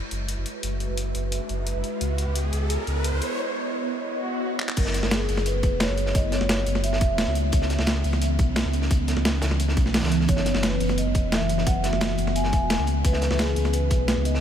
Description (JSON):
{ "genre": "liquid drum and bass", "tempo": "174 BPM", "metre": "4/4", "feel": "straight", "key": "unclear", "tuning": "A4 = 442 Hz", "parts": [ { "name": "ethereal airy pad", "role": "sustained chords", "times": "0.0-14.4 s", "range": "E3 to E5", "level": "-29 LUFS", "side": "equal", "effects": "ensemble chorus, built-in reverb, phaser" }, { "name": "riser and swell", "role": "sound effects", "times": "0.0-4.8 s", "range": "none", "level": "-33 LUFS", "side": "equal", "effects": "none" }, { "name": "sub bass with octave", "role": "bass", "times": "0.1-14.4 s", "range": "E1 to C#2", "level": "-26 LUFS", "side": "equal", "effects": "none" }, { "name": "breakbeat sampler-style drum kit", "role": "drums", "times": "0.1-14.3 s", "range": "crash cymbal, handclaps, hi-hat, snare drum", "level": "-28 LUFS", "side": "equal", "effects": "none" }, { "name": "vibraphone with medium mallets", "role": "melody", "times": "4.8-7.3, 10.3-14.4 s", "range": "G#4 to G#5", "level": "-29 LUFS", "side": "equal", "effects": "tape echo" }, { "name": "crunchy breakbeat drum kit", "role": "drums", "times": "4.8-14.4 s", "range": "hi-hat, snare drum", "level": "-33 LUFS", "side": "equal", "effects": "high-pass filter on hats, high-pass filter on snare, high-pass filter on room" }, { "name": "electronic kick drum", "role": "drums", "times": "4.8-14.0 s", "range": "none", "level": "-22 LUFS", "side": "equal", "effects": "none" } ], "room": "light reverb, small room ambience", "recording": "none", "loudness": "-21 LUFS", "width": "side -9 dB against mid", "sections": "0.0-4.8 A section; 4.8-14.4 B section", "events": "build-up 0.0-4.8; riser 0.0-3.4; filter sweep on ambient pad 0.0-4.8; break 3.4-4.8; swell 4.1-4.8; drum fill 4.6; drop 4.8-14.4", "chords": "0.0 F#9sus4; 1.8 C#m9; 4.8 F#9sus4; 7.4 C#m9; 10.3 F#9sus4; 12.9 C#m9" }